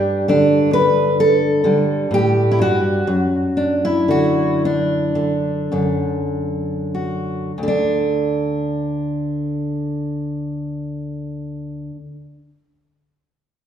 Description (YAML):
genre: folk, solo fingerstyle acoustic guitar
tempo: 46-69 BPM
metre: 4/4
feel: rubato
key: D major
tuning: A4 = 440 Hz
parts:
  - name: fingerpicked steel-string acoustic guitar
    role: solo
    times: 0.0-12.0 s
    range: D2 to B4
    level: -17 LUFS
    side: equal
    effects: none
room: wet recital hall reverb, RT60 1.3 s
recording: recorded in a church or concert hall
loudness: -16 LUFS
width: side -9 dB against mid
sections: 0.0-7.6 A section; 7.6-12.7 B section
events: slowing down 0.0-7.6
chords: 0.0 G5; 3.1 D/F#; 7.6 N.C.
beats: 0.30 1.19 2.12 | 3.08 4.08 5.16 6.32 | 7.59 8.89 10.16 11.42